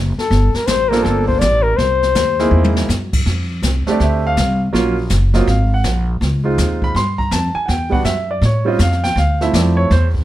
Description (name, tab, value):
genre	jazz, small-group swing and bop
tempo	163 BPM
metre	4/4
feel	swing 65% on 8ths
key	F major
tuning	A4 = 440 Hz
part	upright bass	bass	0.0-10.2 s	Gb1 to A2	-16 LUFS	equal	none
part	mellow flugelhorn	melody	0.2-2.9 s	A4 to D5	-16 LUFS	left 4 dB	plate reverb
part	jazz brush drum kit	drums	0.2-10.2 s	brushed snare drum, crash cymbal, hi-hat, kick drum, snare drum, toms	-22 LUFS	equal	none
part	warm grand piano	accompaniment	0.9-10.1 s	F3 to C6	-18 LUFS	right 3 dB	none
room	light reverb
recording	none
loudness	-13 LUFS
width	side -14 dB against mid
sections	0.0-3.3 A section; 3.3-10.2 B section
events	drum fill 2.5-2.9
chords	0.3 Gm11; 1.8 C7alt; 3.3 F69; 4.7 Gbmaj7#11; 5.5 Absus2; 6.2 Dbmaj9; 7.7 Em9; 8.4 A7alt; 9.2 Dm9